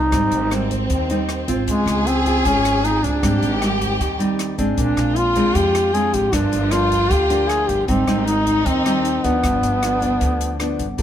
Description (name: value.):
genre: bossa nova.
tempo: 154 BPM.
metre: 4/4.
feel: straight.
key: unclear.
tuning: A4 = 441 Hz.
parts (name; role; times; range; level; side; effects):
mellow duduk; melody; 0.0-10.6 s; Ab3 to Ab4; -19 LUFS; equal; none.
warm symphonic violin section; second line; 0.0-10.8 s; C4 to Ab4; -25 LUFS; left 1 dB; none.
nylon-string guitar; accompaniment; 0.0-11.0 s; G2 to A4; -23 LUFS; equal; none.
upright bass; bass; 0.0-11.0 s; G1 to F2; -24 LUFS; equal; none.
open jazz drum kit; drums; 0.1-11.0 s; hi-hat, kick drum, rim click; -28 LUFS; equal; none.
room: light reverb.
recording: none.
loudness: -16 LUFS.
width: side -10 dB against mid.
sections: 0.0-11.0 A section.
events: none.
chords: 0.1 Abmaj7; 1.7 Dbmaj7; 3.2 Abmaj7; 4.8 Bb9; 6.3 Gm7; 7.9 Abmaj7; 9.4 G7.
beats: | 0.12 0.51 0.89 1.28 | 1.67 2.06 2.45 2.84 | 3.22 3.61 4.00 4.39 | 4.78 5.17 5.55 5.94 | 6.33 6.72 7.11 7.50 | 7.88 8.27 8.66 9.05 | 9.44 9.82 10.21 10.60 | 10.99.